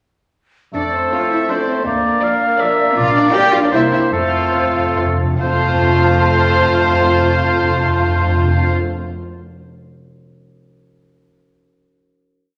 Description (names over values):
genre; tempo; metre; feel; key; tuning
quick classical-period movement for symphony orchestra; 138-164 BPM; 3/4; rubato; F major; A4 = 440 Hz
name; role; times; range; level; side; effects
clear oboe; second line; 0.7-8.7 s; A4 to F5; -21 LUFS; equal; none
dark studio violin section; second line; 0.7-8.7 s; Bb4 to G5; -27 LUFS; equal; none
small flute group; second line; 0.7-8.7 s; C5 to A5; -29 LUFS; equal; none
warm bassoon; accompaniment; 0.7-8.7 s; F3 to Bb3; -25 LUFS; equal; none
dark chamber cello section; bass; 0.7-8.7 s; Bb3 to G4; -23 LUFS; equal; none
warm chamber double bass section; bass; 0.7-8.7 s; Bb1 to F2; -26 LUFS; equal; none
dark French horn section; sustained chords; 0.8-8.7 s; A3 to D4; -30 LUFS; equal; none
warm studio violin section; melody; 1.1-8.7 s; C5 to D5; -24 LUFS; equal; none
dark symphonic viola section; accompaniment; 1.1-8.7 s; F3 to Bb4; -30 LUFS; equal; none
timpani; percussion; 4.1-8.7 s; F2; -22 LUFS; equal; none
room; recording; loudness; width
wet scoring stage reverb, RT60 1.6 s; none; -15 LUFS; mono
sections
0.7-5.4 A section; 5.4-7.9 final chord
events
slowing down 2.4-5.4; timpani fill 4.1-5.4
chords
0.7 F; 1.9 Bb/D; 3.0 Bb; 3.7 C7; 4.1 F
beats
| 0.74 1.12 1.50 | 1.87 2.23 2.60 | 2.97 3.34 3.73 | 4.13 4.55 4.97 | 5.40 5.82 6.24 | 6.66 7.08 7.50